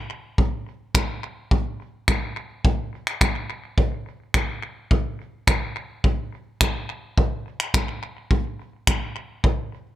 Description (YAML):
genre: pop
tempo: 106 BPM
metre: 4/4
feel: straight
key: none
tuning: none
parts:
  - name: unplugged drum kit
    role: drums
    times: 0.4-9.6 s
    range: finger snaps, kick drum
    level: -21 LUFS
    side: equal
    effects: analog delay
room: light reverb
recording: echo-heavy mix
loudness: -22 LUFS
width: side -14 dB against mid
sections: 0.0-10.0 A section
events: none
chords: none